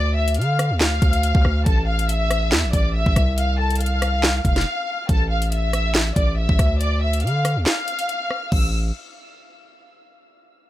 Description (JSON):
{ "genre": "hip hop, drill", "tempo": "140 BPM", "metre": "4/4", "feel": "half-time", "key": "A minor", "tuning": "A4 = 442 Hz", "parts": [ { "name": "warm symphonic violin section", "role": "melody", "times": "0.0-8.7 s", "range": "A4 to F6", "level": "-24 LUFS", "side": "left 1 dB", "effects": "low-pass filter" }, { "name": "distorted 808-style bass", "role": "bass", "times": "0.0-8.9 s", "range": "F1 to D3", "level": "-21 LUFS", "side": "equal", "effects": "distortion" }, { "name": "drill drum kit", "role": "drums", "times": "0.3-8.6 s", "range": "crash cymbal, handclaps, hi-hat, kick drum, rim click, snare drum", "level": "-20 LUFS", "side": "equal", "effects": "none" } ], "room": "digital ambience", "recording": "none", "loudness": "-18 LUFS", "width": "side -14 dB against mid", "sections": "0.0-5.1 A section; 5.1-8.5 B section; 8.5-10.2 C section", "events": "break 4.7-5.1, 7.7-8.5", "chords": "0.0 Dm; 1.7 Am; 3.4 F; 5.1 A5; 6.8 Dm; 8.5 A5" }